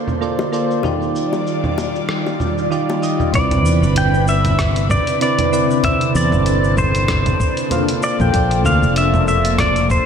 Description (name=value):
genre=sunset chillout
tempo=96 BPM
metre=4/4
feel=swing 56% on 16ths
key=unclear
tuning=A4 = 440 Hz
part: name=soft electric-piano-like synth keys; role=accompaniment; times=0.0-10.1 s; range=C3 to F5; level=-20 LUFS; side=moving between left 4 dB and right 4 dB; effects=chorus, tremolo, auto-pan, digital delay
part: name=airy breathy pad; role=sustained chords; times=0.0-10.1 s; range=C3 to D5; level=-22 LUFS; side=equal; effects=chorus, phaser
part: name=dusty soul sampler-style drum kit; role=drums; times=0.1-10.0 s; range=congas, hi-hat, rim click, shaker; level=-23 LUFS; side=right 1 dB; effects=low-pass filter on perc, low-pass filter on snare, low-pass filter on hats, low-pass filter on room
part: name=bongos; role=percussion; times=0.4-3.0 s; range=none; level=-27 LUFS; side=left 5 dB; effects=none
part: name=fingered electric bass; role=bass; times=3.3-10.0 s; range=F1 to E2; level=-17 LUFS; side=equal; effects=none
part: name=electronic kick drum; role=drums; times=3.3-10.0 s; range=none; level=-21 LUFS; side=equal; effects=none
part: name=pedal steel guitar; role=melody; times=3.4-10.1 s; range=C5 to G5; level=-19 LUFS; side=equal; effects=digital delay
room=light reverb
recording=none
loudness=-14 LUFS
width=side -7 dB against mid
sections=0.0-3.3 A section; 3.3-10.1 B section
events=filter sweep on analog synth pad 0.0-3.3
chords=0.0 Bbmaj9; 0.8 Ebmaj9; 3.3 Cmaj9; 8.0 Bbmaj9